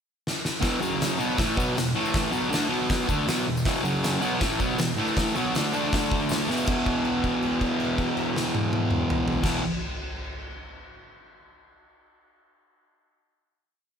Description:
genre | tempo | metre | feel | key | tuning
garage rock duo or trio | 159 BPM | 4/4 | straight | unclear | A4 = 440 Hz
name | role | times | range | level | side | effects
oversized low-tuned drum kit | drums | 0.3-9.5 s | crash cymbal, hi-hat, kick drum, snare drum, toms | -28 LUFS | equal | none
fuzz guitar | riff | 0.6-9.6 s | E2 to D4 | -24 LUFS | equal | distortion
tambourine | percussion | 0.6-6.8 s | none | -42 LUFS | left 4 dB | none
room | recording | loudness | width
light reverb | none | -23 LUFS | side -7 dB against mid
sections
0.0-0.6 pickup bar; 0.6-6.7 riff; 6.7-9.7 final chord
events
drum fill 0.3-0.6, 6.5; held note 6.7-9.4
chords
0.0 N.C.; 0.6 E5; 0.8 F#5; 1.2 E5; 1.9 A5; 2.3 Bm7; 2.7 B5; 3.1 E5; 3.8 F#5; 4.2 E5; 5.0 A5; 5.3 Bm7; 5.7 D5; 6.5 E5

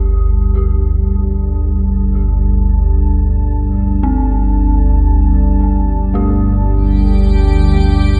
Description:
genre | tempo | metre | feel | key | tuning
dark ambient drone | free time | none | none | unclear | A4 = 440 Hz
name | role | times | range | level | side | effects
dark analog pad | sustained chords | 0.0-8.2 s | G3 to A5 | -22 LUFS | equal | chorus
dark detuned synth bell | arpeggios | 0.0-8.2 s | A3 to G4 | -29 LUFS | equal | chorus, diffuse ambient delay
deep rumbling drone | drone | 0.0-8.2 s | G1 to D2 | -15 LUFS | equal | built-in reverb, phaser, subtle chorus
icy glass pad | texture | 6.9-8.2 s | G4 to G5 | -26 LUFS | equal | chorus, built-in reverb
room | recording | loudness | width
moderate huge ambient reverb, RT60 7.6 s | dark, warm production | -14 LUFS | mono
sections
0.0-8.2 A section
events
fade-out on synth bell 0.0-8.2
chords
0.0 Gsus2

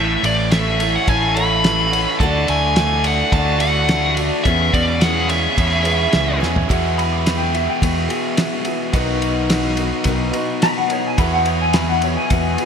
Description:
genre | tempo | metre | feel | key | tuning
folk rock and heartland rock | 107 BPM | 4/4 | straight | E mixolydian, E major from 6.7 s | A4 = 440 Hz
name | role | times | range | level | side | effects
nasal lead guitar with a parked wah | melody | 0.0-6.4 s | D5 to B5 | -20 LUFS | left 1 dB | overdrive, digital delay
clear grand piano | accompaniment | 0.0-12.7 s | E4 to F#5 | -32 LUFS | right 7 dB | none
picked old ladder-braced acoustic guitar | accompaniment | 0.0-12.7 s | B2 to D5 | -27 LUFS | left 3 dB | wide subtle chorus
accordion | sustained chords | 0.0-12.7 s | A3 to B4 | -31 LUFS | right 3 dB | stereo widening
biting overdriven guitar | riff | 0.0-12.7 s | E2 to A4 | -23 LUFS | right 1 dB | none
fingered electric bass | bass | 0.0-12.6 s | A1 to E2 | -21 LUFS | equal | none
cloth-damped thuddy drum kit | drums | 0.2-12.7 s | kick drum, ride cymbal, snare drum, toms | -21 LUFS | equal | none
pedal steel guitar | second line | 7.0-12.7 s | C#5 to D6 | -22 LUFS | left 2 dB | wide subtle chorus, digital delay
room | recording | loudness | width
light reverb, small room reverb | bright 1980s-style digital production | -15 LUFS | side -7 dB against mid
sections
0.0-6.7 A section; 6.7-12.7 B section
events
drum fill 6.4; pedal steel guitar solo 6.7-12.7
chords
0.0 A; 2.2 D; 4.5 E6; 6.7 Eadd9; 9.0 B; 11.2 Eadd9

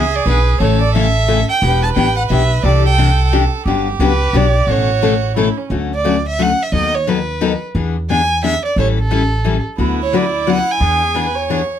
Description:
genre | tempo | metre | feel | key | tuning
acoustic string swing (jazz manouche) | 176 BPM | 3/4 | swing 60% on 8ths | D major | A4 = 437 Hz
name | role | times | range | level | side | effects
warm violin | melody | 0.0-11.4 s | A4 to A5 | -18 LUFS | right 2 dB | none
warm violin | second line | 0.0-5.7, 9.8-11.8 s | C#4 to C#5 | -22 LUFS | right 8 dB | none
picked steel-string acoustic guitar | accompaniment | 0.0-11.6 s | B2 to B4 | -18 LUFS | left 7 dB | none
upright bass | bass | 0.0-11.6 s | E1 to E2 | -17 LUFS | right 1 dB | none
room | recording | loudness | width
light reverb | none | -13 LUFS | side -10 dB against mid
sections
0.0-5.7 A section; 5.7-11.8 B section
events
none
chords
0.0 E7; 0.6 A; 1.6 Em7; 2.6 Cadd9; 3.7 Gmaj7; 4.7 Aadd9; 5.7 Dmaj7; 6.7 B7/D#; 7.7 E7; 8.8 A7; 9.8 D69; 10.8 E7

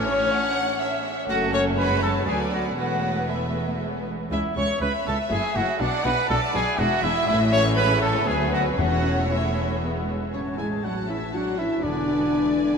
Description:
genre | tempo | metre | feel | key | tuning
quick classical-period movement for symphony orchestra | 121 BPM | 3/4 | straight | A major | A4 = 442 Hz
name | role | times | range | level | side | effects
dark chamber violin section | melody | 0.0-12.8 s | C#5 to C#6 | -32 LUFS | equal | none
warm symphonic violin section | second line | 0.0-12.8 s | A4 to G#5 | -30 LUFS | left 1 dB | none
warm symphonic viola section | accompaniment | 0.0-12.8 s | F#3 to E4 | -30 LUFS | equal | none
mellow trumpet | stabs | 0.0-9.8 s | C#4 to C#5 | -26 LUFS | equal | none
dark chamber double bass section | bass | 0.0-12.8 s | E1 to D2 | -30 LUFS | equal | none
rich chamber cello section | bass | 0.0-12.8 s | C#2 to G#3 | -31 LUFS | equal | none
timpani | percussion | 0.0-0.5, 8.8-9.5, 11.8-12.5 s | E2 to A2 | -34 LUFS | left 2 dB | none
warm clarinet | second line | 10.3-12.8 s | C#4 to G#4 | -34 LUFS | right 4 dB | none
warm oboe | second line | 10.3-12.8 s | C#5 to G#5 | -38 LUFS | left 2 dB | none
mellow French horn section | sustained chords | 10.3-12.8 s | C#4 to G#4 | -25 LUFS | left 2 dB | none
room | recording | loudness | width
wet huge ambient reverb, RT60 8.5 s | in a vast, echoing space | -21 LUFS | side -6 dB against mid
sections
0.0-10.3 A section; 10.3-12.8 B section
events
none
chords
0.0 A; 1.3 F#m; 2.3 Bm/D; 2.8 Esus4; 3.8 E; 4.3 C#m; 5.3 F#m7; 5.8 Bm; 6.8 E7; 7.3 A; 8.3 Bm/D; 8.8 A/E; 9.8 E; 10.3 A; 11.8 E7

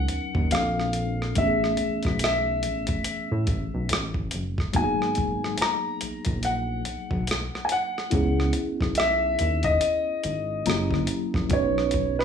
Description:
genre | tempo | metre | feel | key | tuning
R&B, neo-soul | 71 BPM | 4/4 | swing 58% on 16ths | G# minor | A4 = 440 Hz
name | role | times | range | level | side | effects
warm grand piano | melody | 0.0-12.2 s | B4 to A#5 | -26 LUFS | left 1 dB | slapback echo, plate reverb
tine electric piano | accompaniment | 0.0-12.2 s | E3 to A#5 | -30 LUFS | left 1 dB | medium stereo tremolo, plate reverb
rubbery square bass | bass | 0.0-12.2 s | F#1 to A2 | -28 LUFS | equal | none
boom bap sampler-style drum kit | drums | 0.1-12.2 s | hi-hat, kick drum, rim click | -28 LUFS | equal | none
room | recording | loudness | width
moderate studio reverb, RT60 0.6 s | small room reverb | -23 LUFS | side -7 dB against mid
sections
0.0-12.2 A section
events
tine electric piano fill 10.2-11.5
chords
0.0 Bmaj9; 0.5 A#maj9; 1.4 Amaj9; 4.7 G#m9; 8.1 C#m9; 10.7 F#7b9; 11.5 Badd9

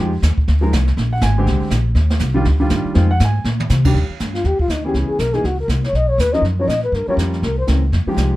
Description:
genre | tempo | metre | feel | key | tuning
jazz, small-group swing and bop | 242 BPM | 4/4 | swing 59% on 8ths | Eb major | A4 = 437 Hz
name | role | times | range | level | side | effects
warm baby grand piano | accompaniment | 0.0-8.4 s | D3 to Ab5 | -21 LUFS | equal | none
upright bass | bass | 0.0-8.4 s | Ab1 to C3 | -17 LUFS | equal | none
jazz brush drum kit | drums | 0.2-8.4 s | brushed snare drum, crash cymbal, hi-hat, kick drum, snare drum, toms | -24 LUFS | right 1 dB | none
breathy flugelhorn | melody | 4.3-7.7 s | Eb4 to D#5 | -20 LUFS | left 2 dB | none
room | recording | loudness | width
light reverb | dark, warm production | -15 LUFS | side -17 dB against mid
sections
0.0-4.0 A section; 4.0-8.4 B section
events
drum fill 3.5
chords
0.0 Fm7; 1.0 Bb13; 2.0 Ebmaj9; 3.0 Fm7; 3.5 Bbadd9; 4.0 Ebmaj7; 4.9 Dbm7; 5.4 Bbmadd9 (rootless); 5.9 Bmaj9#11; 6.9 Gm7b5; 7.4 C7b9

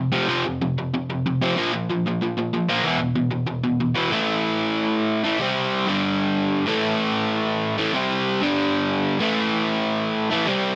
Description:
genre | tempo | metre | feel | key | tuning
punk | 189 BPM | 4/4 | straight | unclear | A4 = 438 Hz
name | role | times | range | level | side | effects
overdriven electric guitar | solo | 0.0-10.8 s | E2 to C4 | -22 LUFS | equal | none
room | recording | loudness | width
moderate studio reverb, RT60 0.6 s | none | -22 LUFS | mono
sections
0.0-4.1 A section; 4.1-10.8 B section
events
none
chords
0.0 F5; 1.6 Bb5; 2.9 E5; 4.1 A5; 5.4 C5; 5.9 G5; 6.7 A5; 7.9 C5; 8.4 G5; 9.2 A5

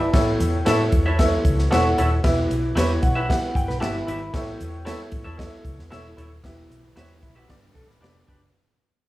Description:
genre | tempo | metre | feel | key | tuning
uptempo 1960s-style soul | 114 BPM | 4/4 | straight | A mixolydian | A4 = 440 Hz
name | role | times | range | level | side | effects
clear upright piano | accompaniment | 0.0-8.4 s | G2 to B5 | -25 LUFS | equal | none
mellow electric guitar | riff | 0.0-0.1, 3.7-8.5 s | E4 to B4 | -29 LUFS | left 1 dB | none
vintage muted fingered electric bass | bass | 0.1-8.5 s | D#1 to A2 | -24 LUFS | equal | none
swinging big-band drum kit | drums | 0.1-8.4 s | hi-hat, kick drum, snare drum | -24 LUFS | equal | none
electric guitar through a small old amp | stabs | 0.7-8.4 s | D4 to E5 | -29 LUFS | right 3 dB | none
room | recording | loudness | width
light reverb, studio ambience | small room ambience | -18 LUFS | side -16 dB against mid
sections
0.0-8.5 A section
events
fade-out 0.0-8.5; upright piano fill 2.8-4.3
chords
0.1 A; 2.2 Em; 4.3 A; 6.4 Em; 7.5 G

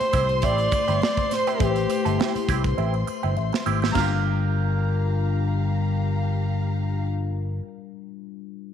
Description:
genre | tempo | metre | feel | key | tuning
lush 1970s-style soul | 102 BPM | 4/4 | swing 54% on 16ths | G dorian | A4 = 440 Hz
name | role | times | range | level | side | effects
warm alto saxophone | melody | 0.0-2.7 s | G4 to D5 | -25 LUFS | right 1 dB | none
warm studio violin section | second line | 0.0-7.1 s | G4 to C6 | -32 LUFS | right 1 dB | none
mellow tine electric piano | accompaniment | 0.0-8.7 s | G3 to C6 | -29 LUFS | left 14 dB | phaser
semi-hollow electric guitar | riff | 0.0-7.7 s | Bb3 to A4 | -31 LUFS | right 12 dB | wah
fingered electric bass | bass | 0.0-7.6 s | G1 to C2 | -24 LUFS | equal | none
modern studio drum kit | drums | 0.0-4.1 s | hi-hat, kick drum, snare drum, splash cymbal | -27 LUFS | right 3 dB | none
triangle | percussion | 0.1-4.2 s | none | -47 LUFS | right 14 dB | none
room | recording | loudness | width
light reverb, studio reverb | 1960s-style stereo with parts hard left and right | -21 LUFS | side -9 dB against mid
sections
0.0-4.0 A section; 4.0-6.3 B section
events
drum fill 2.8-4.0; tine electric piano fill 2.8-4.0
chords
0.0 Am7; 4.0 Gm7

